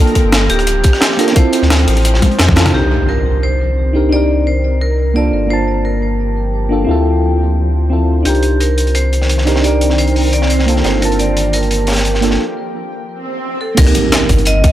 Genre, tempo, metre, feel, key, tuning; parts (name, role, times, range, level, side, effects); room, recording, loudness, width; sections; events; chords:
liquid drum and bass; 174 BPM; 4/4; straight; C dorian; A4 = 442 Hz
vibraphone with hard mallets; melody; 0.0-14.7 s; G4 to Eb5; -20 LUFS; equal; tape echo
mellow FM electric piano; accompaniment; 0.0-14.7 s; Bb3 to A5; -18 LUFS; right 1 dB; chorus, phaser, tape echo
shimmering ambient pad; sustained chords; 0.0-14.7 s; Eb3 to C5; -23 LUFS; equal; chorus, built-in reverb, sidechain pumping
crunchy breakbeat drum kit; drums; 0.1-2.7, 8.3-14.7 s; hi-hat, snare drum; -21 LUFS; equal; high-pass filter on hats, high-pass filter on snare, high-pass filter on room
warm sub bass; bass; 0.2-14.7 s; D1 to F2; -14 LUFS; equal
electronic kick drum; drums; 0.2-2.6, 13.8-14.7 s; -11 LUFS; equal
jungle sampler-style drum kit; drums; 0.2-2.7, 13.8-14.7 s; crash cymbal, hi-hat, rim click, snare drum, toms; -16 LUFS; equal; low-pass filter on hats, low-pass filter on snare, low-pass filter on toms, low-pass filter on cymbals, low-pass filter on room, tape echo
impact and swell; sound effects; 2.7-4.1, 13.2-14.7 s; -21 LUFS; equal
moderate spring reverb, RT60 2.1 s; echo-heavy mix; -11 LUFS; side -13 dB against mid
0.0-2.7 A section; 2.7-13.8 B section
filter sweep on FM electric piano 0.0-2.7; drum fill 2.2-2.7; band accent 2.6; impact 2.7-4.1, 13.8-14.7; filter sweep on drum 2.7-13.8; break 12.4-13.8; swell 13.2-13.8
0.0 Gm7; 1.4 Dm7; 2.7 Cm7; 5.3 Gm7; 6.9 Dm7; 8.3 Cm7; 10.8 Gm7; 12.4 N.C.; 13.8 Cm7